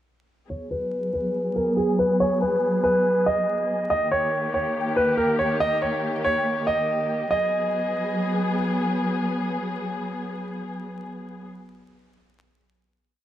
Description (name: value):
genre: hip hop, drill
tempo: 141 BPM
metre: 4/4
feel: half-time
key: G# minor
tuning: A4 = 439 Hz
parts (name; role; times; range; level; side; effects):
- clear concert grand piano; melody; 0.5-8.5 s; G#4 to D#5; -22 LUFS; right 1 dB; low-pass filter
- muted studio string section; sustained chords; 0.5-11.5 s; D#3 to G#4; -26 LUFS; left 1 dB; low-pass filter
room: light reverb, small room ambience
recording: dark, warm production, vinyl crackle, faint mains hum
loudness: -21 LUFS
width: side -12 dB against mid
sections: 0.5-7.3 breakdown; 7.3-10.7 final chord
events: filter sweep 0.5-7.3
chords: 0.5 G#m7; 3.9 D#; 7.3 G#m7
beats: | 0.50 0.92 1.35 1.77 | 2.20 2.62 3.05 3.48 | 3.90 4.33 4.75 5.18 | 5.60 6.03 6.46 6.88 | 7.31 7.73 8.16 8.58 | 9.01 9.43 9.86 10.29